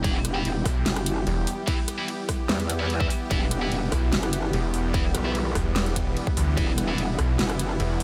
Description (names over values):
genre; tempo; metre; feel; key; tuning
heavy wobble dubstep; 147 BPM; 4/4; half-time; E minor; A4 = 439 Hz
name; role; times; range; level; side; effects
supersaw pad; sustained chords; 0.0-8.0 s; E3 to G4; -35 LUFS; equal; sidechain pumping
heavy high-gain guitar; stabs; 0.0-7.0 s; E3 to E4; -36 LUFS; equal; distortion, digital delay
metallic wobble bass; bass; 0.0-7.8 s; E1 to E2; -29 LUFS; equal; chorus, overdrive
dubstep drum kit; drums; 0.0-8.0 s; hi-hat, ride cymbal, rim click, snare drum; -34 LUFS; equal; none
electronic kick drum; drums; 0.0-7.3 s; none; -29 LUFS; equal; overdrive
granular cloud pad; texture; 0.0-8.0 s; G3 to G5; -37 LUFS; equal; built-in reverb, sidechain pumping
snarling distorted saw bass; bass; 0.7-1.5, 3.9-8.0 s; E1 to D2; -28 LUFS; equal; distortion, overdrive
room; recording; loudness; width
light reverb, digital ambience; none; -25 LUFS; mono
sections
0.0-8.0 A section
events
none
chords
0.0 Emadd9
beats
| 0.04 0.45 0.86 1.27 | 1.68 2.08 2.49 2.90 | 3.31 3.72 4.12 4.53 | 4.94 5.35 5.76 6.17 | 6.57 6.98 7.39 7.80